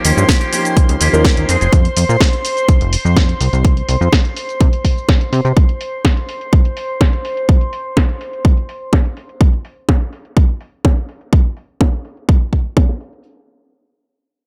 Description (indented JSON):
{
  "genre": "filtered disco house",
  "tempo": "125 BPM",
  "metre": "4/4",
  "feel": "straight",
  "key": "unclear",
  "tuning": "A4 = 440 Hz",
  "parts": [
    { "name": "dark concert grand piano", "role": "accompaniment", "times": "0.0-1.5 s", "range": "F3 to Bb4", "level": "-22 LUFS", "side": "equal", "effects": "phaser, sidechain pumping, low-pass filter" },
    { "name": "rich chamber string section", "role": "sustained chords", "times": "0.0-9.4 s", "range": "C5 to C6", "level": "-25 LUFS", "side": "equal", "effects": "sidechain pumping, low-pass filter" },
    { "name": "electric guitar with an envelope filter", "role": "riff", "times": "0.0-1.7 s", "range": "Eb3 to Ab4", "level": "-22 LUFS", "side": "equal", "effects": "vintage 12-bit sampler grit, sidechain pumping, low-pass filter" },
    { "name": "plucky analog bass", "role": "bass", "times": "0.0-5.5 s", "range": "F1 to C3", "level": "-17 LUFS", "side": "equal", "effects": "tube saturation, sidechain pumping, low-pass filter" },
    { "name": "house drum kit", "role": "drums", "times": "0.0-13.2 s", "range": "cabasa, hi-hat, snare drum", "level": "-22 LUFS", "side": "equal", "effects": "sidechain pumping on hats, low-pass filter on hats, sidechain pumping on perc, low-pass filter on perc, low-pass filter on snare, low-pass filter on room" },
    { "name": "electronic kick drum", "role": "drums", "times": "0.3-12.9 s", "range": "none", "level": "-14 LUFS", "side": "equal", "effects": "none" }
  ],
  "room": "light reverb, digital ambience",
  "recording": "none",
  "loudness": "-15 LUFS",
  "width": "mono",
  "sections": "0.0-13.2 A section; 13.2-14.5 B section",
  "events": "filter sweep on drum 0.0-13.2",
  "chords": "0.0 Eb7; 1.5 Fm; 3.6 N.C."
}